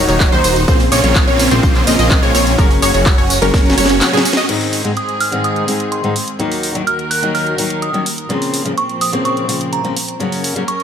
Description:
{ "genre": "EDM, festival progressive house", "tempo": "126 BPM", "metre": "4/4", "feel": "straight", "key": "Bb minor", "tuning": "A4 = 440 Hz", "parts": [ { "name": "fingerpicked steel-string acoustic guitar", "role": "accompaniment", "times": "0.0-10.6 s", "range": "Ab2 to Eb4", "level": "-20 LUFS", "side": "left 2 dB", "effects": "sidechain pumping, digital delay" }, { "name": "warm chamber string section", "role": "sustained chords", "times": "0.0-10.8 s", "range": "Eb2 to Bb4", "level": "-23 LUFS", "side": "equal", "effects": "sidechain pumping" }, { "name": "wide unison pluck", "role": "arpeggios", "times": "0.0-4.5 s", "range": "Ab4 to Eb5", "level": "-19 LUFS", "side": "equal", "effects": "sidechain pumping, digital delay" }, { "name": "supersaw chords", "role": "riff", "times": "0.0-4.5 s", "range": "Bb3 to Eb5", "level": "-17 LUFS", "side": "right 1 dB", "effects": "phaser, sidechain pumping, low-pass filter, digital delay" }, { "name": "fat analog bass", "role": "bass", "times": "0.0-4.0 s", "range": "Eb1 to Eb2", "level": "-18 LUFS", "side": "equal", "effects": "sidechain pumping" }, { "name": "house drum kit", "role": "drums", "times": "0.1-10.8 s", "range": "crash cymbal, handclaps, hi-hat, ride cymbal, snare drum, tambourine, woodblock", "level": "-19 LUFS", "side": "equal", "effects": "overdrive" }, { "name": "electronic kick drum", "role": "drums", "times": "0.2-3.6 s", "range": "none", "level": "-13 LUFS", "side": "equal", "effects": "overdrive" }, { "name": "glassy synth bell", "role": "melody", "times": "5.0-10.8 s", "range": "Bb5 to Gb6", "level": "-20 LUFS", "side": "right 3 dB", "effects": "chorus, digital delay" } ], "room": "light reverb, digital ambience", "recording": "none", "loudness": "-12 LUFS", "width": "side -8 dB against mid", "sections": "0.0-4.5 A section; 4.5-10.8 B section", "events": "drop 0.0-4.5; drum fill 3.5-4.5; band accent 4.3", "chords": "0.0 Ebm; 0.7 Bbmadd9; 2.6 Gb; 4.5 Ab; 6.4 Ebm; 8.3 Bbmadd9; 10.2 Gb" }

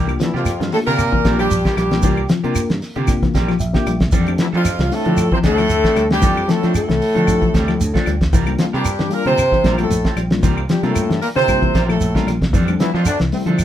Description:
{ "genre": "afrobeat", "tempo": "114 BPM", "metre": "4/4", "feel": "swing 54% on 16ths", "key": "C mixolydian", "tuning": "A4 = 440 Hz", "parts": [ { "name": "clean electric guitar", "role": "arpeggios", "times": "0.0-13.6 s", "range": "D3 to G3", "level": "-24 LUFS", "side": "left 5 dB", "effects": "warbly pitch drift" }, { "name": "electric guitar at the edge of break-up", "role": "stabs", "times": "0.0-13.6 s", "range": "G3 to Bb4", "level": "-27 LUFS", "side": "right 4 dB", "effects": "none" }, { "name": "fingered electric bass", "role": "bass", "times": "0.0-13.6 s", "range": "Bb1 to F3", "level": "-21 LUFS", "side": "equal", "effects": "none" }, { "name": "mellow reed electric piano", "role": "accompaniment", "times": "0.1-13.5 s", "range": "G3 to G5", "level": "-25 LUFS", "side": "left 4 dB", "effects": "spring reverb" }, { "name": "cloth-damped thuddy drum kit", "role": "drums", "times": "0.1-13.6 s", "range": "hi-hat, kick drum, snare drum", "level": "-19 LUFS", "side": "equal", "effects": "none" }, { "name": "claves", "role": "percussion", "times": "0.1-13.6 s", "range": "none", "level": "-32 LUFS", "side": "left 7 dB", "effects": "none" }, { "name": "warm horn section", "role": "melody", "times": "0.2-13.6 s", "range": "C4 to C5", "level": "-20 LUFS", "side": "equal", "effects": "none" }, { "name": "brilliant bass trombone", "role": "second line", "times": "0.2-13.6 s", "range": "C2 to C3", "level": "-29 LUFS", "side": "left 5 dB", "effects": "none" }, { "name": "clear trombone", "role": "second line", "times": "0.2-13.6 s", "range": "C3 to C4", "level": "-25 LUFS", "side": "right 2 dB", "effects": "none" }, { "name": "shekere", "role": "percussion", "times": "0.2-13.6 s", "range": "none", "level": "-23 LUFS", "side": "right 2 dB", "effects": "none" } ], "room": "moderate studio reverb, RT60 0.6 s", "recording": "band playing live in one room", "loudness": "-14 LUFS", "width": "side -11 dB against mid", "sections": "0.0-13.6 A section", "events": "reed electric piano fill 3.1-4.1", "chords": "0.0 C7sus4; 4.1 F69; 8.3 C7sus4; 12.5 F69" }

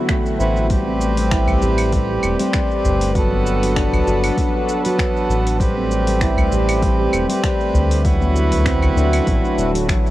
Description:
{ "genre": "organic downtempo", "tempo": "98 BPM", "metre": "4/4", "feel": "swing 55% on 16ths", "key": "A dorian", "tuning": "A4 = 439 Hz", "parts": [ { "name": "warm analog pad", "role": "sustained chords", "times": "0.0-10.1 s", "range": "D3 to B4", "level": "-25 LUFS", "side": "equal", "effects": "chorus, sidechain pumping" }, { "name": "handpan", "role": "arpeggios", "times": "0.0-9.9 s", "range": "F#3 to G4", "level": "-22 LUFS", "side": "equal", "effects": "tape echo" }, { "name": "deep house drum kit", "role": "drums", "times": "0.1-10.1 s", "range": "claves, finger snaps, hi-hat, shaker", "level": "-28 LUFS", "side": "equal", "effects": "overdrive" }, { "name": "electronic kick drum", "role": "drums", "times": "0.1-10.0 s", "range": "none", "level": "-22 LUFS", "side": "equal", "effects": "overdrive" }, { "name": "hand-pumped harmonium", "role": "accompaniment", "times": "0.4-9.7 s", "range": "B3 to B4", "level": "-22 LUFS", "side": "right 2 dB", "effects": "sidechain pumping, tape echo" }, { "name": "round analog bass", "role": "bass", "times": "0.4-10.1 s", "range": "D1 to D2", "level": "-20 LUFS", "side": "equal", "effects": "none" }, { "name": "udu", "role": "percussion", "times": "1.5-8.9 s", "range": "none", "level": "-23 LUFS", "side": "equal", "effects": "none" } ], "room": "light reverb, small room ambience", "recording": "worn, warbling old tape, cassette tape, warbly pitch drift", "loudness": "-15 LUFS", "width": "side -15 dB against mid", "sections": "0.0-10.1 A section", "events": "none", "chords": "0.0 D13; 0.7 Am7; 3.2 Gmaj7; 5.6 Am7; 8.0 D69" }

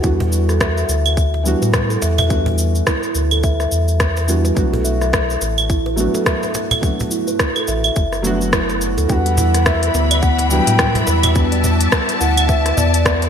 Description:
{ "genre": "organic downtempo", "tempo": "106 BPM", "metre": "4/4", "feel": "swing 58% on 16ths", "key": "E minor", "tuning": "A4 = 439 Hz", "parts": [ { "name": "felt-muted upright piano", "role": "accompaniment", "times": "0.0-13.3 s", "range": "E3 to F#4", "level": "-24 LUFS", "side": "equal", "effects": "sidechain pumping, ping-pong delay" }, { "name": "steel tongue drum", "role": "arpeggios", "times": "0.0-13.2 s", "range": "B3 to E5", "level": "-22 LUFS", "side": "right 2 dB", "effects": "ping-pong delay" }, { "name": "warm sub bass", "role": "bass", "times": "0.0-13.3 s", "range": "F#1 to A2", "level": "-18 LUFS", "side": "equal", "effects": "sidechain pumping" }, { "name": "electronic kick drum", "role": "drums", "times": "0.0-13.2 s", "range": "none", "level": "-19 LUFS", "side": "equal", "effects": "none" }, { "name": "organic electronic drum kit", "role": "drums", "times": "0.0-13.3 s", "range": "claves, hi-hat, rim click, shaker", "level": "-20 LUFS", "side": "equal", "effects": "gated reverb" }, { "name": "cajon", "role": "percussion", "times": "0.2-13.3 s", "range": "none", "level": "-27 LUFS", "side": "right 2 dB", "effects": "none" }, { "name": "breathy bass bansuri", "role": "melody", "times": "9.1-13.3 s", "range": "D5 to G5", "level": "-23 LUFS", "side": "left 2 dB", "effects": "ping-pong delay" }, { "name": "rich symphonic string section", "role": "sustained chords", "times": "9.1-13.3 s", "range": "E3 to B5", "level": "-22 LUFS", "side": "left 4 dB", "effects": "sidechain pumping" } ], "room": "moderate lush hall reverb, RT60 1.8 s, small room reverb", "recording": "bright 1980s-style digital production", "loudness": "-14 LUFS", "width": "side -8 dB against mid", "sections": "0.0-9.1 A section; 9.1-13.3 B section", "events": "none", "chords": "0.0 Em7; 4.6 Bm7; 9.1 Em7" }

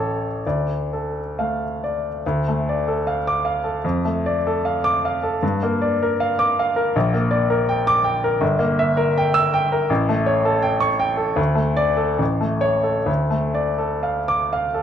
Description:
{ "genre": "classical, romantic character piece for solo piano", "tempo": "62-83 BPM", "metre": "2/4", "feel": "rubato", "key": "D minor", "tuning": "A4 = 441 Hz", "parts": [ { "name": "clear baby grand piano", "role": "solo", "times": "0.0-14.8 s", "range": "G1 to E6", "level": "-18 LUFS", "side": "equal", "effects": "none" } ], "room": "moderate recital hall reverb, RT60 1.4 s", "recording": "dark, warm production", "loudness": "-18 LUFS", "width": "side -9 dB against mid", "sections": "0.0-2.2 A section; 2.2-14.8 A section", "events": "none", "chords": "0.4 Dm; 3.8 Dm/F; 5.4 Gm7; 6.9 Gm/Bb; 8.4 Edim/G; 9.9 A7; 11.4 D5; 12.2 A; 13.1 Dm" }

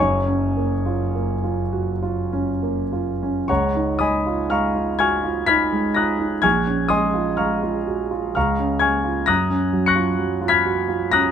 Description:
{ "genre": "classical, impressionist solo piano", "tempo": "49-66 BPM", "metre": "3/4", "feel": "rubato", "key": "Db mixolydian", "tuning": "A4 = 440 Hz", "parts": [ { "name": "warm concert grand piano", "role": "solo", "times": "0.0-11.3 s", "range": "Gb1 to Db7", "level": "-18 LUFS", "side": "equal", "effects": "none" } ], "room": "light reverb", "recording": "close, detailed microphones", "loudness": "-18 LUFS", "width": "side -8 dB against mid", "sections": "0.0-3.5 A section; 3.5-11.3 B section", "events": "none", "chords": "0.0 Gbmaj7; 3.5 Dbadd9; 6.4 Bbm9; 8.4 Db; 9.3 Gbmaj7" }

